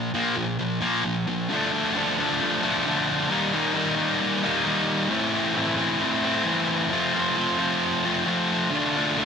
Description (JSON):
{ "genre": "rock", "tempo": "133 BPM", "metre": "4/4", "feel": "straight", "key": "unclear", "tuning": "A4 = 440 Hz", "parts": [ { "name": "thick fuzz guitar", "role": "solo", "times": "0.0-9.2 s", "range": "A2 to F4", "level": "-21 LUFS", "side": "left 1 dB", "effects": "distortion" } ], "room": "moderate large studio reverb, RT60 0.9 s, digital ambience", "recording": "none", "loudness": "-21 LUFS", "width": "side -6 dB against mid", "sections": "0.0-1.5 A section; 1.5-9.2 B section", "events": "none", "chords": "0.0 Bb5; 1.5 Dm; 3.3 Eb; 5.1 Am; 6.9 F; 8.7 Dm", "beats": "0.13 0.58 1.03 | 1.49 1.94 2.39 2.85 | 3.30 3.75 4.20 4.65 | 5.11 5.56 6.01 6.46 | 6.91 7.37 7.82 8.27 | 8.72 9.17" }